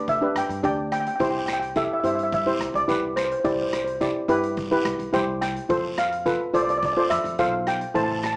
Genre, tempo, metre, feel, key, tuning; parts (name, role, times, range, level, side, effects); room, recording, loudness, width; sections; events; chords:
calypso; 107 BPM; 4/4; straight; A4 = 440 Hz
steel pan; melody; 0.0-8.4 s; C5 to A5; -24 LUFS; equal; plate reverb
steel pan; accompaniment; 0.0-8.3 s; D4 to D5; -24 LUFS; equal
upright bass; bass; 0.0-8.4 s; A1 to G2; -35 LUFS; equal
street-band drum kit; drums; 0.1-8.4 s; hi-hat, kick drum, rim click; -35 LUFS; equal
guiro; percussion; 1.2-8.4 s; -37 LUFS; right 1 dB
moderate small room reverb, RT60 0.5 s; small speaker sound; -21 LUFS; side -28 dB against mid
0.0-8.4 A section
0.0 G; 1.2 C; 5.7 F